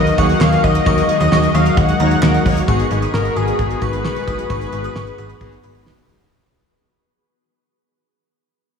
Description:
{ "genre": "synth-pop", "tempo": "132 BPM", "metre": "4/4", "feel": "straight", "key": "G# minor", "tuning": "A4 = 438 Hz", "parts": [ { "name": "wide unison lead", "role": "melody", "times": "0.0-5.8 s", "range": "G#4 to F#5", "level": "-20 LUFS", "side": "left 2 dB", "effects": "analog delay" }, { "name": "analog synth brass", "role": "accompaniment", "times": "0.0-6.3 s", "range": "F#3 to C#5", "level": "-21 LUFS", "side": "left 1 dB", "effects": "chorus" }, { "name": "ensemble organ-string", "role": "sustained chords", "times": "0.0-6.3 s", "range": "D#3 to B4", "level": "-23 LUFS", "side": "equal", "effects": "ensemble chorus" }, { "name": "slap-like FM bass", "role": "bass", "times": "0.0-6.2 s", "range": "F#1 to D#2", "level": "-19 LUFS", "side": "equal", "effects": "none" }, { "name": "damped 70s drum kit", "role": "drums", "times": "0.1-6.3 s", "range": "handclaps, hi-hat, kick drum, snare drum", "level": "-22 LUFS", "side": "equal", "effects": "none" }, { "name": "shimmering bell with halo", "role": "second line", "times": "0.2-5.7 s", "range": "A#5 to D#6", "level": "-26 LUFS", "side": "right 2 dB", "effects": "ensemble chorus, analog delay" } ], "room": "wet huge ambient reverb, RT60 7.8 s", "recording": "dreamy mix soaked in reverb, studio reverb", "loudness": "-13 LUFS", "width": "side -6 dB against mid", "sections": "0.0-2.7 A section; 2.7-6.3 B section", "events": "fade-out 2.7-6.3", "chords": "0.0 D#m; 2.7 G#m7" }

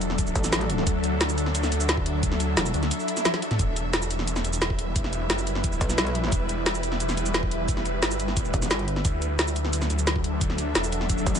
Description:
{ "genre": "dark technical drum and bass", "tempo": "176 BPM", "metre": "4/4", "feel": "straight", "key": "E minor", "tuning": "A4 = 441 Hz", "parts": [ { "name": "swarming drone", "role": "sustained chords", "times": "0.0-11.4 s", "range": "F#3 to E5", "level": "-29 LUFS", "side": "left 1 dB", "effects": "built-in reverb, sidechain pumping" }, { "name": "snarling distorted saw bass", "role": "bass", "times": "0.0-11.3 s", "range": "E1 to D2", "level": "-28 LUFS", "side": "equal", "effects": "distortion, overdrive, sidechain pumping" }, { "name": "drum and bass drum kit", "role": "drums", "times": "0.0-11.4 s", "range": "hi-hat, shaker, snare drum, toms", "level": "-27 LUFS", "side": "equal", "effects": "none" }, { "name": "electronic kick drum", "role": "drums", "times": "0.2-11.3 s", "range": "none", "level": "-27 LUFS", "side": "equal", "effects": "none" }, { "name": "metallic wobble bass", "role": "bass", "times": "0.4-2.7, 5.8-6.3, 8.5-9.0, 11.3-11.4 s", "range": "E1 to B1", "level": "-27 LUFS", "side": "equal", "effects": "chorus" }, { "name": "swell", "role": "sound effects", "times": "3.0-3.6 s", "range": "none", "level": "-31 LUFS", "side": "right 2 dB", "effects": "none" } ], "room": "little or no reverb", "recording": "nothing above 10.7 kHz", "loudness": "-23 LUFS", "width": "side -8 dB against mid", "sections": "0.0-11.4 A section", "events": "swell 3.0-3.6; drum fill 3.3-3.6", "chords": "0.0 Dadd9; 3.6 Em; 9.0 Dadd9" }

